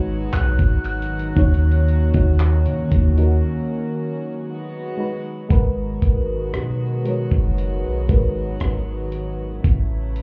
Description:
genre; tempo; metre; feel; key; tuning
contemporary R&B; 58 BPM; 4/4; straight; G# minor; A4 = 440 Hz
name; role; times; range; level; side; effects
mellow FM electric piano; accompaniment; 0.0-9.7 s; D#3 to C#5; -28 LUFS; equal; chorus, phaser
warm chamber string section; sustained chords; 0.0-10.2 s; C#3 to F#4; -31 LUFS; equal; sidechain pumping
clean 808-style bass; bass; 0.0-10.2 s; F#1 to D#3; -22 LUFS; equal; none
synth chime; melody; 0.3-4.4 s; F#6; -35 LUFS; equal; ensemble chorus, phaser, digital delay
dusty soul sampler-style drum kit; drums; 0.3-10.2 s; handclaps, hi-hat, kick drum, rim click; -22 LUFS; equal; none
room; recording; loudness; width
little or no reverb; heard muffled through a wall, club reverb, EQ; -20 LUFS; mono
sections
0.0-5.5 A section; 5.5-10.2 B section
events
break 3.4-5.5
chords
0.0 G#m7; 1.4 D#m7; 4.5 G#m7; 5.5 G#m9; 9.6 A

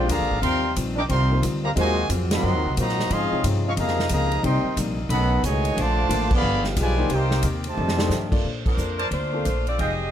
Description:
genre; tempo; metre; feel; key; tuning
jazz, big band swing; 180 BPM; 4/4; swing 63% on 8ths; Bb major; A4 = 440 Hz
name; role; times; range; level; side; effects
warm trumpet section; melody; 0.0-8.3 s; Eb4 to D6; -26 LUFS; right 1 dB; none
clear trombone section; second line; 0.0-8.3 s; A2 to G4; -28 LUFS; equal; none
warm concert grand piano; accompaniment; 0.0-9.4 s; C3 to D5; -30 LUFS; left 5 dB; none
bright saxophone section; sustained chords; 0.0-8.4 s; C3 to G4; -35 LUFS; equal; none
upright bass; bass; 0.0-10.1 s; F1 to Bb2; -24 LUFS; equal; none
archtop guitar, miked and amplified; accompaniment; 0.1-10.0 s; F2 to C5; -32 LUFS; left 4 dB; none
swinging big-band drum kit; drums; 0.1-9.9 s; crash cymbal, hi-hat, kick drum, ride cymbal, snare drum; -29 LUFS; equal; none
clear saxophone section; melody; 8.7-10.1 s; F3 to Eb5; -27 LUFS; left 1 dB; none
mellow trumpet section; stabs; 9.0-9.9 s; Ab4 to A5; -29 LUFS; right 2 dB; none
room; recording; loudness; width
light reverb; close, detailed microphones; -20 LUFS; side -10 dB against mid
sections
0.0-8.4 A section; 8.4-10.1 B section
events
band accent 2.3, 6.3, 8.6; drum fill 7.8-8.1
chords
0.4 Eb69; 1.8 Ab13; 3.1 Dbmaj9; 4.4 Cm7; 5.1 B9; 5.8 Bbmaj9; 6.4 G7b9; 7.1 Cm7; 7.8 F13; 8.4 Bbmaj9

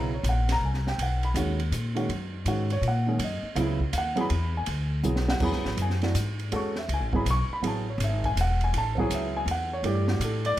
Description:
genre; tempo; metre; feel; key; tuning
modal jazz; 163 BPM; 3/4; swing 65% on 8ths; B major, A major from 5.4 s; A4 = 441 Hz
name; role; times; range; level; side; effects
dark baby grand piano; accompaniment; 0.0-10.6 s; C#3 to C#6; -29 LUFS; right 1 dB; none
upright bass; bass; 0.0-10.6 s; E1 to A#2; -27 LUFS; left 1 dB; none
open jazz drum kit; drums; 0.2-10.6 s; crash cymbal, hi-hat, kick drum, ride cymbal, snare drum; -34 LUFS; right 2 dB; none
room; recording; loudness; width
light reverb; none; -24 LUFS; side -14 dB against mid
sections
0.0-5.4 A section; 5.4-10.6 A section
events
drum fill 5.0-5.4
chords
0.0 Bmaj9; 4.3 E7; 5.4 Amaj9; 9.8 Gmaj7sus2

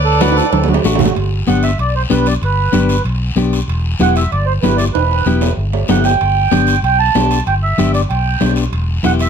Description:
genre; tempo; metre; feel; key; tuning
latin, cumbia; 190 BPM; 4/4; straight; G major; A4 = 440 Hz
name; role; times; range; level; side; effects
warm saxophone section; melody; 0.0-1.0 s; B4 to D5; -19 LUFS; equal; none
mellow accordion; second line; 0.0-9.3 s; F#4 to A5; -17 LUFS; right 6 dB; none
fingered electric bass; bass; 0.0-9.3 s; E1 to D2; -16 LUFS; equal; none
clean electric guitar; accompaniment; 0.2-9.3 s; A3 to G4; -17 LUFS; left 9 dB; none
congas; percussion; 0.2-9.2 s; none; -20 LUFS; right 3 dB; none
guiro; percussion; 0.2-9.3 s; none; -28 LUFS; left 5 dB; none
timbales and cowbell; percussion; 0.2-9.3 s; none; -23 LUFS; right 8 dB; none
room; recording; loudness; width
light reverb; close, detailed microphones; -12 LUFS; side -7 dB against mid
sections
0.0-1.2 A section; 1.2-9.3 B section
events
drum fill 0.2-1.2, 4.9-6.2; accordion solo 1.2-9.3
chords
0.0 D; 1.2 G; 3.7 Em; 6.2 G; 8.7 Em

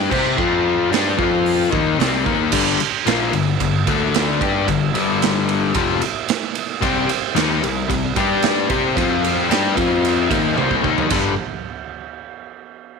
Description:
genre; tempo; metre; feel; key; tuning
blues rock power trio and southern rock; 112 BPM; 4/4; straight; unclear; A4 = 441 Hz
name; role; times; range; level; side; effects
overdriven electric guitar; riff; 0.0-11.3 s; F2 to C5; -18 LUFS; left 8 dB; none
fuzz picked electric bass; bass; 0.0-11.4 s; F1 to C3; -25 LUFS; right 3 dB; overdrive
bright tonewheel organ; sustained chords; 0.1-2.4, 6.8-11.4 s; F3 to D5; -28 LUFS; right 11 dB; overdrive, slow rotary speaker
raw garage drum kit; drums; 0.1-11.2 s; crash cymbal, hi-hat, kick drum, ride cymbal, snare drum, toms; -22 LUFS; right 9 dB; none
room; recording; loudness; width
light reverb, small room ambience; 1960s-style stereo with parts hard left and right; -16 LUFS; side -5 dB against mid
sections
0.0-2.5 A section; 2.5-11.1 A section; 11.1-13.0 B section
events
drum fill 10.6-11.1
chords
0.1 C5; 0.4 F5; 0.9 C5; 1.2 F5; 1.7 C5; 2.5 G5; 3.9 D5; 4.4 G5; 6.8 C5; 8.2 G5; 8.7 C5; 9.0 F5; 9.5 C5; 9.8 F5; 10.3 C5; 11.1 G

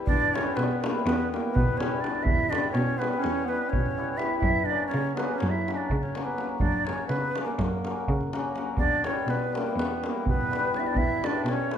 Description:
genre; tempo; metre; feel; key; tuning
balkan folk, Balkan wedding band; 248 BPM (eighths); 9/8; straight; E dorian sharp4; A4 = 440 Hz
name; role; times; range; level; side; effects
cimbalom; accompaniment; 0.0-11.8 s; F#3 to B4; -32 LUFS; left 4 dB; none
breathy ney; melody; 0.1-11.8 s; A#4 to E5; -30 LUFS; right 1 dB; none
mellow clarinet; second line; 0.1-11.8 s; A#3 to E4; -33 LUFS; right 4 dB; none
warm cello; bass; 0.1-11.7 s; E2 to C#3; -30 LUFS; equal; none
davul; percussion; 0.1-11.8 s; none; -30 LUFS; equal; none
room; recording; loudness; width
wet recital hall reverb, RT60 1.3 s; minimal, uncompressed stereo recording; -24 LUFS; side -9 dB against mid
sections
0.1-11.8 A section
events
none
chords
0.1 Em; 4.4 F#; 8.8 Em

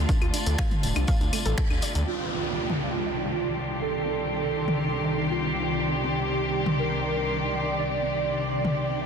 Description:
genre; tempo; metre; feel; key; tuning
melodic techno; 121 BPM; 4/4; straight; C dorian; A4 = 440 Hz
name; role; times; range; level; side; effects
rich chamber string section; sustained chords; 0.0-9.1 s; C2 to G4; -30 LUFS; left 1 dB; sidechain pumping, low-pass filter
warbly dusty pluck; arpeggios; 0.0-9.1 s; G3 to F5; -39 LUFS; left 1 dB; chorus, sidechain pumping, dub echo
gritty driven synth bass; bass; 0.0-2.0 s; D1 to D2; -26 LUFS; equal; sidechain pumping
bowed-like drone; drone; 0.0-9.1 s; C3 to G3; -36 LUFS; left 1 dB; built-in reverb, phaser, sidechain pumping
granular cloud pad; texture; 0.0-9.1 s; Eb3 to C6; -32 LUFS; right 1 dB; built-in reverb, sidechain pumping
electronic kick drum; drums; 0.1-1.7 s; none; -25 LUFS; equal; none
punchy analog drum machine; drums; 0.1-8.7 s; claves, finger snaps, hi-hat, toms; -31 LUFS; left 2 dB; soft clipping on snare
tambourine; percussion; 0.1-2.1 s; none; -36 LUFS; left 5 dB; none
analog synth brass; melody; 2.1-9.1 s; F4 to D5; -30 LUFS; right 4 dB; chorus, sidechain pumping, dub echo
downlifter; sound effects; 2.1-6.0 s; none; -34 LUFS; equal; none
room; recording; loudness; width
moderate lush hall reverb, RT60 1.8 s, digital ambience; dense, heavily limited modern master; -24 LUFS; side -6 dB against mid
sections
0.0-2.1 A section; 2.1-9.1 B section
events
band accent 1.6; filter sweep on analog polysynth 2.1-9.1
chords
0.0 Dm; 2.1 Cmadd9

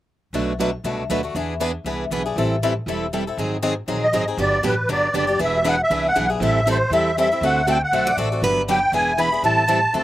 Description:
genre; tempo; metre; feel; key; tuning
acoustic string swing (jazz manouche); 237 BPM; 4/4; swing 55% on 8ths; G major; A4 = 440 Hz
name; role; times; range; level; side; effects
picked plugged-in steel-string acoustic guitar; accompaniment; 0.3-10.0 s; B2 to B4; -26 LUFS; right 5 dB; none
picked swing-style acoustic guitar; accompaniment; 0.3-10.0 s; B2 to A4; -24 LUFS; left 5 dB; slapback echo
upright bass; bass; 0.3-10.0 s; E1 to E2; -27 LUFS; equal; none
musette accordion; melody; 4.0-10.0 s; B4 to B5; -19 LUFS; right 1 dB; none
picked plugged-in steel-string acoustic guitar; second line; 8.1-8.6 s; B4 to D5; -25 LUFS; right 2 dB; none
room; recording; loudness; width
little or no reverb; recorded outdoors, with no room sound; -18 LUFS; side -14 dB against mid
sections
0.3-4.4 A section; 4.4-10.0 B section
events
none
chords
0.3 Bm7; 1.4 E7; 2.4 Am7; 3.4 Ab9; 4.4 Gmaj7; 5.4 E7; 6.4 Am7; 7.4 D7; 8.4 Gmaj7; 8.9 E7; 9.4 Am7

